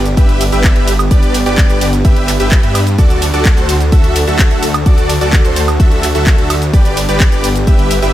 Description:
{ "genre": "EDM, festival progressive house", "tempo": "128 BPM", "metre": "4/4", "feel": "straight", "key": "G major", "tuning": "A4 = 442 Hz", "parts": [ { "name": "lush unison pad", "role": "sustained chords", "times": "0.0-8.1 s", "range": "D3 to A4", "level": "-20 LUFS", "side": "equal", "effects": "chorus, sidechain pumping" }, { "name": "wide detuned saw bass", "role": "bass", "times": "0.0-8.1 s", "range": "G1 to G2", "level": "-16 LUFS", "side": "equal", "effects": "chorus, sidechain pumping" }, { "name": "house drum kit", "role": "drums", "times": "0.1-8.1 s", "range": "handclaps, hi-hat, ride cymbal, shaker, woodblock", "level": "-19 LUFS", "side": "right 1 dB", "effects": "small room ambience" }, { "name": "dense compressed supersaw", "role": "riff", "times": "0.2-8.1 s", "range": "F#4 to E5", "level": "-17 LUFS", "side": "right 1 dB", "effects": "sidechain pumping, tape echo" }, { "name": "electronic kick drum", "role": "drums", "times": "0.2-7.8 s", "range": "none", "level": "-10 LUFS", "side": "equal", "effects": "small room ambience" } ], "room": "digital ambience", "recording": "none", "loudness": "-9 LUFS", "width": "side -13 dB against mid", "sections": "0.0-8.1 A section", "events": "none", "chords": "0.0 G; 3.0 D; 6.7 G", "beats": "0.17 0.64 | 1.11 1.58 2.05 2.52 | 2.98 3.45 3.92 4.39 | 4.86 5.33 5.80 6.27 | 6.74 7.20 7.67" }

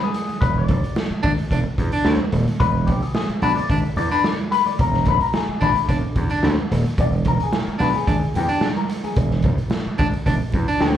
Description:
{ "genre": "funk", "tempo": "110 BPM", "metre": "4/4", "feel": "straight", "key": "E mixolydian", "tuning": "A4 = 440 Hz", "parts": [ { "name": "clear baritone saxophone", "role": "second line", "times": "0.0-11.0 s", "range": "D4", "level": "-25 LUFS", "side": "right 3 dB", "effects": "slapback echo" }, { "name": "semi-hollow electric guitar", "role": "accompaniment", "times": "0.0-11.0 s", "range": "D4 to E5", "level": "-23 LUFS", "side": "left 6 dB", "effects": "wah, slapback echo" }, { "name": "raw garage drum kit", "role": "drums", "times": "0.0-10.9 s", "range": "hi-hat, kick drum, snare drum", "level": "-23 LUFS", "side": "equal", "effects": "none" }, { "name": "congas", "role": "percussion", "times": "0.0-11.0 s", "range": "none", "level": "-31 LUFS", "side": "right 10 dB", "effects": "slapback echo" }, { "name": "gritty slap bass", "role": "bass", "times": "0.4-10.9 s", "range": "D#1 to E2", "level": "-20 LUFS", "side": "equal", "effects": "overdrive" } ], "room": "small room reverb", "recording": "live gig heard through the venue's PA, club reverb", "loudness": "-18 LUFS", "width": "side -10 dB against mid", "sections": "0.0-11.0 A section", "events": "clean electric guitar solo 0.0-11.0", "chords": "0.0 E7", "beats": "| 0.41 0.96 1.51 2.06 | 2.60 3.15 3.70 4.25 | 4.79 5.34 5.89 6.44 | 6.98 7.53 8.08 8.62 | 9.17 9.72 10.26 10.81" }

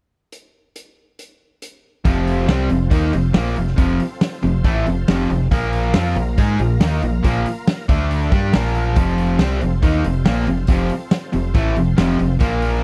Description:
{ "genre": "classic rock", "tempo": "139 BPM", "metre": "4/4", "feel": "straight", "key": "F mixolydian", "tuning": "A4 = 440 Hz", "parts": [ { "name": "raw garage drum kit", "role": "drums", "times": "0.3-12.7 s", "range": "hi-hat, kick drum, snare drum", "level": "-21 LUFS", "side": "equal", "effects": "none" }, { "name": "cranked stack guitar", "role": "riff", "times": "2.0-12.8 s", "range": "F2 to Ab4", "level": "-24 LUFS", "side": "equal", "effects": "overdrive" }, { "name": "distorted electric guitar", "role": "riff", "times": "2.0-12.8 s", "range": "F2 to Ab4", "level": "-25 LUFS", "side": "equal", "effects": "distortion" }, { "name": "bright tonewheel organ", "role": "sustained chords", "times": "2.1-12.8 s", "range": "A3 to F5", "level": "-36 LUFS", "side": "equal", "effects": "none" }, { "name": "deep dub fingered electric bass", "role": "bass", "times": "2.1-12.8 s", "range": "F1 to Ab2", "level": "-23 LUFS", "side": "equal", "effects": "none" } ], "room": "little or no reverb", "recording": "dry, close 1970s-style studio recording", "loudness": "-18 LUFS", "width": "mono", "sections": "0.3-2.1 A section; 2.1-12.8 B section", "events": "none", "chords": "0.3 N.C.; 2.1 F; 5.5 Bb5; 7.9 D5; 8.3 Bb5; 9.0 F", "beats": "| 0.32 0.76 1.19 1.62 | 2.05 2.48 2.92 3.35 | 3.78 4.21 4.65 5.08 | 5.51 5.94 6.38 6.81 | 7.24 7.67 8.10 8.53 | 8.96 9.40 9.83 10.26 | 10.69 11.12 11.55 11.98 | 12.41" }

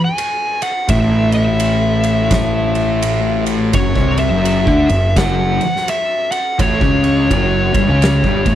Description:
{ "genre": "stoner and doom metal", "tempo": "84 BPM", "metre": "4/4", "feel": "swing 62% on 8ths", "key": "unclear", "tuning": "A4 = 440 Hz", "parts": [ { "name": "fuzz lead guitar", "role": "melody", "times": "0.0-8.6 s", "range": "C#5 to G#5", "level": "-18 LUFS", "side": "equal", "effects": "distortion, slapback echo" }, { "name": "oversized low-tuned drum kit", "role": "drums", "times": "0.2-8.6 s", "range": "kick drum, ride cymbal, snare drum", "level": "-20 LUFS", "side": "equal", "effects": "none" }, { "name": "thick fuzz guitar", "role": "riff", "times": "0.9-8.6 s", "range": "F#2 to D4", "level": "-17 LUFS", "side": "left 1 dB", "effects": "distortion" }, { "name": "fuzz picked electric bass", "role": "bass", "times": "0.9-8.6 s", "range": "F#1 to D2", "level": "-18 LUFS", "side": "equal", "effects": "overdrive" } ], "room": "little or no reverb", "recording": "none", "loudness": "-13 LUFS", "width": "side -11 dB against mid", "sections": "0.0-8.6 A section", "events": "none", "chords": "0.0 E5; 3.7 F#5", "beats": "0.18 | 0.89 1.60 2.31 3.03 | 3.74 4.45 5.17 5.88 | 6.60 7.31 8.03" }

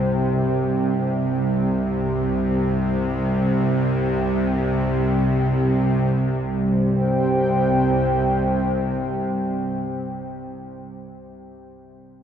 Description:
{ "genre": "dark ambient drone", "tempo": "free time", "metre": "none", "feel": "none", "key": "unclear", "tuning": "A4 = 438 Hz", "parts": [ { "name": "dark analog pad", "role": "sustained chords", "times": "0.0-10.4 s", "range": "G3 to G5", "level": "-22 LUFS", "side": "equal", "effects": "chorus" }, { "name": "bowed-like drone", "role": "drone", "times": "0.0-9.8 s", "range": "C2 to C3", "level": "-23 LUFS", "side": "equal", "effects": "built-in reverb" }, { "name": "quartz singing bowl", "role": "texture", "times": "0.0-6.2 s", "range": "G4", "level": "-37 LUFS", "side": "left 4 dB", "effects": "none" } ], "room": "wet cathedral reverb, RT60 6.1 s", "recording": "in a vast, echoing space", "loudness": "-19 LUFS", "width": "side -8 dB against mid", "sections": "0.0-6.1 A section; 6.1-10.8 B section", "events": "filter sweep on synth drone 0.0-6.1", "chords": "0.0 C5", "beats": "free time" }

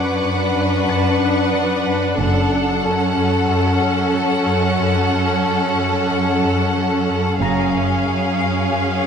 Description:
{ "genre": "cinematic", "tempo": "92 BPM", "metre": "4/4", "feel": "straight", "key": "F# minor", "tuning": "A4 = 440 Hz", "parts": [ { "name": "warm symphonic violin section", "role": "melody", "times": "0.0-9.1 s", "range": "E#5 to F#5", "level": "-24 LUFS", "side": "left 3 dB", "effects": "none" }, { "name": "clear symphonic violin section", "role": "second line", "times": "0.0-9.1 s", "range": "G#4 to B4", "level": "-22 LUFS", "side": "equal", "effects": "none" }, { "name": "rich symphonic viola section", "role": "accompaniment", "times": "0.0-9.1 s", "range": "C#4 to D4", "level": "-24 LUFS", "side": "equal", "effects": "none" }, { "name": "concert harp", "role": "riff", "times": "0.0-9.1 s", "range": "F#2 to F#3", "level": "-21 LUFS", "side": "left 3 dB", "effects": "none" }, { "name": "clear studio cello section", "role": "bass", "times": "0.0-9.1 s", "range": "F#2", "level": "-24 LUFS", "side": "right 5 dB", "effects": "none" }, { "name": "concert harp", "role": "texture", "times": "0.0-9.1 s", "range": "A5 to B#6", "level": "-31 LUFS", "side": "left 3 dB", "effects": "none" }, { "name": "rich symphonic violin section", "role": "texture", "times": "0.0-1.8 s", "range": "C#6 to D6", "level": "-31 LUFS", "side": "left 1 dB", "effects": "none" }, { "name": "rich symphonic double bass section", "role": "bass", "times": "2.2-2.8, 7.4-8.0 s", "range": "F#1", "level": "-25 LUFS", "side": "right 4 dB", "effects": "none" } ], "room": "moderate scoring stage reverb, RT60 1.7 s", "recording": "none", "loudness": "-16 LUFS", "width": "side -7 dB against mid", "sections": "0.0-9.1 A section", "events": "none", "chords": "0.0 Bm/F#; 2.2 F#m; 7.4 C#/F#", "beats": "0.23 0.87 1.52 | 2.18 2.84 3.49 4.14 | 4.79 5.45 6.10 6.76 | 7.41 8.07 8.72" }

